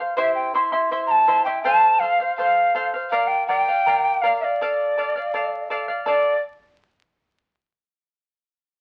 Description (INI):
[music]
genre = andean folk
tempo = 81 BPM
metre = 2/4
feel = straight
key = D minor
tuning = A4 = 438 Hz
[part]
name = charango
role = accompaniment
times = 0.0-6.4 s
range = E4 to C6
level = -26 LUFS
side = equal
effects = none
[part]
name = hollow quena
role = melody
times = 0.2-6.4 s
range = D5 to Bb5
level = -21 LUFS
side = equal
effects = none
[sound]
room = wet studio reverb, RT60 0.6 s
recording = very old 78 rpm record, vinyl crackle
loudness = -21 LUFS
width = mono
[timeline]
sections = 0.0-6.1 A section; 6.1-7.5 B section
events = none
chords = 0.2 C; 1.6 F; 3.1 Bb; 4.6 Dm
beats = | 0.17 0.91 | 1.64 2.38 | 3.12 3.85 | 4.59 5.33 | 6.07